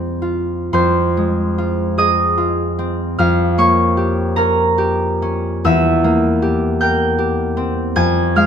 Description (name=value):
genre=classical, solo harp piece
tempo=36-53 BPM (dotted quarters)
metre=6/8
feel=rubato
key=F minor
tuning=A4 = 438 Hz
part: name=concert harp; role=solo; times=0.0-8.5 s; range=E2 to Ab6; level=-14 LUFS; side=equal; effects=none
room=light reverb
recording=minimal, uncompressed stereo recording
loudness=-14 LUFS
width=side -8 dB against mid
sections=0.7-8.5 A section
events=none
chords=0.0 Fm; 3.2 Gm7b5/F; 5.7 C7/E; 8.0 Fm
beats=| 0.73 1.99 | 3.18 4.37 | 5.66 6.81 | 7.96